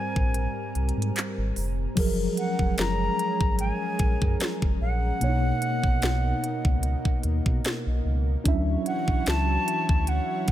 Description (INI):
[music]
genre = contemporary R&B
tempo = 74 BPM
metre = 4/4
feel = swing 54% on 16ths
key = F# major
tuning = A4 = 440 Hz
[part]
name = silver concert flute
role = melody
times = 0.0-10.5 s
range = F#5 to A#5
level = -31 LUFS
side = equal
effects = ping-pong delay
[part]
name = mellow tine electric piano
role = accompaniment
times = 0.0-10.5 s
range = G#2 to E5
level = -30 LUFS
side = equal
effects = medium stereo tremolo
[part]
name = lush unison pad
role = sustained chords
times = 0.0-10.5 s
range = B2 to C#5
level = -34 LUFS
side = right 1 dB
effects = chorus
[part]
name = sub bass with octave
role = bass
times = 0.2-10.5 s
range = E#1 to B2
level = -26 LUFS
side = equal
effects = none
[part]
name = trap drum kit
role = drums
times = 0.2-10.5 s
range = crash cymbal, handclaps, hi-hat, kick drum, snare drum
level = -26 LUFS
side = equal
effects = none
[sound]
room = little or no reverb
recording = none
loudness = -23 LUFS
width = side -12 dB against mid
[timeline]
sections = 0.0-2.0 A section; 2.0-10.5 B section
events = break 0.3-2.0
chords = 0.0 G#maj9; 2.0 F#maj9; 5.2 Bmaj9; 8.5 Dmaj9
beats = 0.35 1.16 | 1.97 2.78 3.59 4.40 | 5.21 6.02 6.83 7.64 | 8.46 9.27 10.08